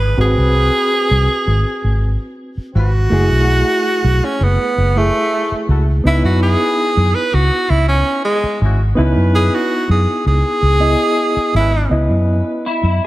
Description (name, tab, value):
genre	blues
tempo	82 BPM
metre	4/4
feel	straight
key	C# minor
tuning	A4 = 439 Hz
part	breathy tenor saxophone	second line	0.0-11.9 s	G#3 to B4	-17 LUFS	right 1 dB	slapback echo
part	overdriven reed electric piano	accompaniment	0.0-13.1 s	A3 to D#5	-21 LUFS	right 1 dB	fast tremolo
part	vintage muted fingered electric bass	bass	0.0-13.0 s	F#1 to F#2	-14 LUFS	equal	none
part	warm horn section	sustained chords	0.2-12.6 s	B#3 to B4	-28 LUFS	left 3 dB	none
part	electric guitar through a small old amp	melody	12.7-13.1 s	E4	-18 LUFS	left 2 dB	ensemble chorus
room	light reverb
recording	lossy compression artefacts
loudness	-13 LUFS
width	side -17 dB against mid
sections	0.0-11.9 A section; 11.9-13.1 B section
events	tenor saxophone solo 0.0-11.9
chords	0.2 G#7#9; 3.1 F#m7; 6.1 C#m7